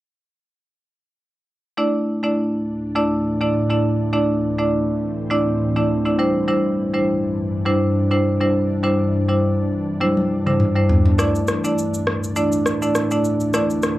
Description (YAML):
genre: afrobeats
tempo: 102 BPM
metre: 4/4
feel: swing 55% on 16ths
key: unclear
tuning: A4 = 440 Hz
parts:
  - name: marimba with medium hard mallets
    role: accompaniment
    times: 1.8-14.0 s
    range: G3 to D5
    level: -19 LUFS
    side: equal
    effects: cassette tape
  - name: ethereal airy pad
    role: sustained chords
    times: 2.5-14.0 s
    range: C2 to D4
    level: -24 LUFS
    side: equal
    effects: ensemble chorus, built-in reverb, cassette tape
  - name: afro-pop drum kit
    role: drums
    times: 10.0-14.0 s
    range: rim click, shaker, toms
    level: -21 LUFS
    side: equal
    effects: cassette tape
room: moderate small room reverb, RT60 0.6 s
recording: home recording on cassette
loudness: -17 LUFS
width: side -16 dB against mid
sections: 1.8-14.0 A section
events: drum fill 10.0-11.2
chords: 1.8 Dsus2; 6.2 Cadd9; 11.2 Dsus2